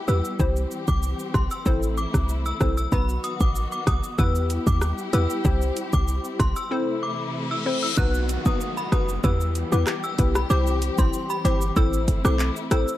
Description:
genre	dancehall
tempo	95 BPM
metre	4/4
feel	straight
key	E harmonic minor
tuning	A4 = 439 Hz
part	warm studio string section	sustained chords	0.0-13.0 s	C3 to G4	-32 LUFS	left 2 dB	sidechain pumping
part	synth chime	melody	0.1-12.9 s	B5 to F#6	-30 LUFS	left 1 dB	ensemble chorus, tape echo
part	hollow square pluck	accompaniment	0.1-12.9 s	B3 to C5	-28 LUFS	left 2 dB	chorus
part	short 808-style bass	bass	0.1-12.9 s	F#1 to E2	-23 LUFS	equal	none
part	afro-pop drum kit	drums	0.1-13.0 s	handclaps, hi-hat, kick drum, rim click, shaker	-25 LUFS	equal	none
part	reverse cymbal and downlifter	sound effects	7.3-13.0 s	none	-34 LUFS	left 2 dB	none
room	digital ambience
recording	dark, warm production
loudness	-21 LUFS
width	side -14 dB against mid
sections	0.0-8.0 A section; 8.0-13.0 B section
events	reverse cymbal 7.3-8.0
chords	0.4 C; 1.7 Am; 2.9 B; 4.2 Em; 5.4 C; 6.7 Am; 8.0 B; 9.2 Em; 10.5 C; 11.8 Am

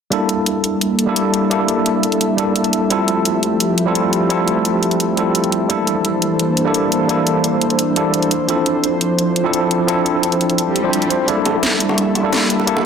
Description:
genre	liquid drum and bass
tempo	172 BPM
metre	4/4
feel	straight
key	G dorian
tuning	A4 = 440 Hz
part	tine electric piano	accompaniment	0.1-12.9 s	F3 to C5	-17 LUFS	equal	overdrive, fast stereo tremolo, tape echo
part	airy breathy pad	sustained chords	0.1-12.9 s	E3 to E5	-20 LUFS	equal	chorus
part	garage drum kit	drums	0.1-12.7 s	hi-hat, snare drum	-20 LUFS	equal	none
part	swell	sound effects	10.7-11.3 s	none	-25 LUFS	equal	none
part	bongos	percussion	11.3-12.8 s	none	-23 LUFS	left 3 dB	none
room	moderate lush hall reverb, RT60 2.1 s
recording	dense, heavily limited modern master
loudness	-14 LUFS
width	side -6 dB against mid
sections	0.1-12.9 A section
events	filter sweep on analog synth pad 0.1-12.9; swell 10.7-11.3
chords	0.1 Gm69; 2.9 Fmaj9; 5.7 C13; 8.3 Dm7; 11.3 Gm69

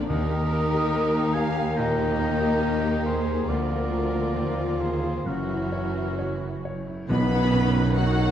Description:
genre	cinematic, emotional film score for orchestra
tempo	64-72 BPM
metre	4/4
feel	rubato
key	unclear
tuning	A4 = 439 Hz
part	warm studio violin section	melody	0.0-8.3 s	F#4 to B5	-36 LUFS	left 2 dB	none
part	rich studio violin section	second line	0.0-8.3 s	C4 to B4	-33 LUFS	left 2 dB	none
part	clear concert grand piano	accompaniment	0.0-8.3 s	B1 to C#5	-30 LUFS	left 1 dB	none
part	rich studio viola section	accompaniment	0.0-8.3 s	Eb3 to C#4	-32 LUFS	equal	none
part	warm French horn section	sustained chords	0.0-8.3 s	F#3 to Bb4	-30 LUFS	left 2 dB	none
part	rich studio cello section	bass	0.0-8.3 s	D2 to B2	-31 LUFS	right 1 dB	none
part	rich studio double bass section	bass	0.0-8.3 s	F#1 to Eb2	-30 LUFS	right 3 dB	none
part	silver concert flute	second line	0.1-8.3 s	F#4 to F#6	-36 LUFS	left 2 dB	none
part	warm oboe	second line	0.1-8.3 s	A#4 to Ab5	-33 LUFS	right 2 dB	none
part	cymbal swell and tam-tam	percussion	3.5-8.3 s	none	-39 LUFS	equal	none
part	clear clarinet	second line	7.1-8.3 s	D#4	-32 LUFS	right 1 dB	none
part	timpani	percussion	7.1-8.3 s	B2	-28 LUFS	right 1 dB	none
room	wet scoring stage reverb, RT60 1.9 s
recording	dark, warm production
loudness	-22 LUFS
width	side -10 dB against mid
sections	0.0-7.1 A section; 7.1-8.3 B section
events	band accent 7.1-7.9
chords	0.1 Eb; 3.5 Bbadd9/D; 5.3 F#7; 7.1 Badd9

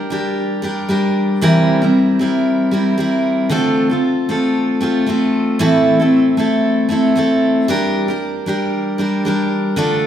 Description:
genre	pop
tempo	115 BPM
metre	4/4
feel	swing 55% on 16ths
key	unclear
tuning	A4 = 440 Hz
part	picked steel-string acoustic guitar	solo	0.0-10.1 s	A2 to Bb4	-14 LUFS	equal	none
room	wet recital hall reverb, RT60 1.7 s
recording	recorded in a church or concert hall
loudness	-14 LUFS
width	side -10 dB against mid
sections	0.0-10.1 A section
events	none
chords	0.0 Gm; 1.4 C7; 3.5 Dm7; 5.6 Am; 7.7 Gm

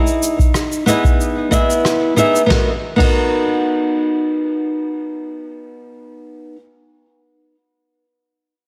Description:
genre	sunset chillout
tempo	92 BPM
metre	4/4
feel	straight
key	B major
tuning	A4 = 435 Hz
part	flamenco guitar	accompaniment	0.0-6.6 s	B3 to E5	-19 LUFS	equal	delay
part	soft brush drum kit	drums	0.1-3.2 s	crash cymbal, rim click, shaker, snare drum	-26 LUFS	equal	none
part	electronic kick drum	drums	0.4-3.2 s	none	-18 LUFS	equal	overdrive
room	light reverb, studio reverb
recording	none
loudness	-16 LUFS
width	mono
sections	0.0-2.5 A section; 2.5-5.1 B section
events	none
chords	0.0 Emaj7; 2.5 Bmaj7

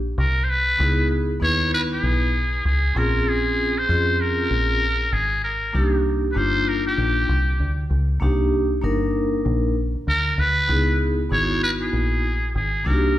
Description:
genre	hip hop, jazz-hop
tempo	97 BPM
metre	4/4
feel	swing 60% on 16ths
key	unclear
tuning	A4 = 437 Hz
part	deep dub fingered electric bass	bass	0.0-13.2 s	G1 to F2	-22 LUFS	equal	none
part	trumpet with metal mute	melody	0.2-13.2 s	G4 to Db5	-23 LUFS	equal	none
part	vibraphone with medium hard mallets	accompaniment	0.8-13.2 s	Bb3 to Cb5	-24 LUFS	equal	none
room	moderate recital hall reverb, RT60 1.5 s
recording	recorded in a church or concert hall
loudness	-19 LUFS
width	side -13 dB against mid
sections	0.0-13.2 A section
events	none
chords	0.0 C7(no3); 0.8 Dbm9; 3.0 Bbm9; 5.7 Cm9; 10.7 Dbm9

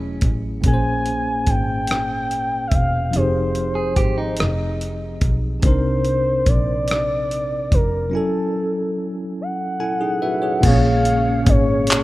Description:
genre	slow six-eight R&B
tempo	48 BPM (dotted quarters)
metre	6/8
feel	straight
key	unclear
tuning	A4 = 441 Hz
part	clean electric guitar	second line	0.0-5.4 s	Db4 to Ab4	-29 LUFS	right 2 dB	none
part	barky tine electric piano	accompaniment	0.0-12.0 s	Bb2 to Ab5	-23 LUFS	equal	fast stereo tremolo
part	warm double bass	bass	0.0-12.0 s	E1 to C2	-23 LUFS	equal	none
part	dusty soul sampler-style drum kit	drums	0.2-12.0 s	crash cymbal, handclaps, hi-hat, kick drum, rim click	-19 LUFS	equal	none
part	gliding portamento lead	melody	0.7-12.0 s	A4 to Ab5	-22 LUFS	equal	chorus
part	tonewheel organ	sustained chords	10.6-12.0 s	Db3 to Db4	-26 LUFS	equal	chorus vibrato, slow rotary speaker
room	light reverb, digital ambience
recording	rough home demo mix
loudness	-17 LUFS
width	side -17 dB against mid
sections	0.0-10.6 A section; 10.6-12.0 B section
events	break 8.1-10.6; tine electric piano fill 9.4-10.6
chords	0.0 Gbm9; 0.6 Bbm9; 3.1 Fm9; 5.6 Cm9; 8.1 Gbm9; 10.6 Bbm7

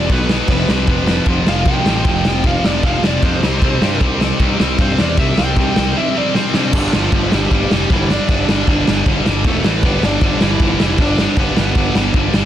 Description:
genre	punk rock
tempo	154 BPM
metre	4/4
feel	straight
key	G mixolydian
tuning	A4 = 440 Hz
part	bluesy overdriven lead guitar	melody	0.0-12.1 s	E3 to G5	-22 LUFS	right 2 dB	distortion
part	distorted electric guitar	riff	0.0-12.5 s	E2 to C4	-18 LUFS	left 1 dB	distortion
part	overdriven picked electric bass	bass	0.0-12.5 s	E1 to G2	-20 LUFS	equal	none
part	raw garage drum kit	drums	0.1-12.4 s	crash cymbal, kick drum, ride cymbal, snare drum	-16 LUFS	equal	none
room	light reverb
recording	dense, heavily limited modern master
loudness	-13 LUFS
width	side -11 dB against mid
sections	0.0-6.7 A section; 6.7-12.5 B section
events	lead electric guitar solo 0.0-6.7; drum fill 6.4-6.7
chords	0.1 B5; 0.5 F5; 3.4 C5; 6.7 G5; 9.5 E5; 9.6 A5; 9.8 G

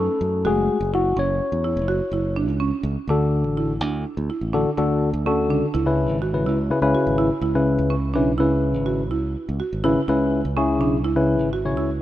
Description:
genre	progressive instrumental, progressive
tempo	249 BPM (eighths)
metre	11/8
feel	straight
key	unclear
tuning	A4 = 440 Hz
part	tine electric piano	accompaniment	0.0-11.9 s	C#3 to C#5	-21 LUFS	left 2 dB	none
part	buzzing marimba with medium mallets	arpeggios	0.0-12.0 s	C#4 to F#4	-26 LUFS	right 5 dB	none
part	modern bright fingered electric bass	bass	0.0-12.0 s	F#1 to F#2	-25 LUFS	right 1 dB	none
room	light reverb, studio ambience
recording	rough home demo mix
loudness	-19 LUFS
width	side -13 dB against mid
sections	0.0-3.1 A section; 3.1-12.0 B section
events	tine electric piano solo 0.0-3.1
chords	0.5 F#sus2; 3.1 D; 5.7 C#m7

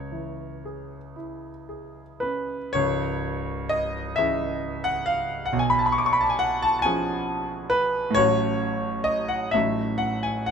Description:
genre	classical, romantic nocturne for solo piano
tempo	36-46 BPM (dotted quarters)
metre	12/8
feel	rubato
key	C# minor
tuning	A4 = 440 Hz
part	clear concert grand piano	solo	0.0-10.5 s	C#1 to D6	-23 LUFS	equal	none
room	moderate studio reverb, RT60 0.8 s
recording	minimal, uncompressed stereo recording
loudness	-22 LUFS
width	side -6 dB against mid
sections	0.0-2.8 A section; 2.8-10.5 A section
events	none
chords	0.0 C#m; 5.5 C#7/B; 8.2 F#m/A; 9.5 D#m7b5/A

